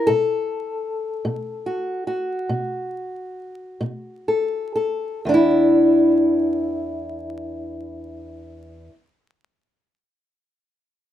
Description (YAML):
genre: acoustic country blues, solo or duo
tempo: 40-53 BPM (dotted quarters)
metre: 12/8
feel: straight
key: unclear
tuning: A4 = 440 Hz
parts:
  - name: fingerpicked old ladder-braced acoustic guitar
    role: solo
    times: 0.0-8.9 s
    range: E2 to A4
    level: -20 LUFS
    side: left 1 dB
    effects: none
room: light reverb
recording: close, detailed microphones, vinyl crackle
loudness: -19 LUFS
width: side -11 dB against mid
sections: 0.0-5.3 A section; 5.3-11.1 B section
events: slowing down 0.0-5.3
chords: 0.1 B5; 5.3 Dsus2/E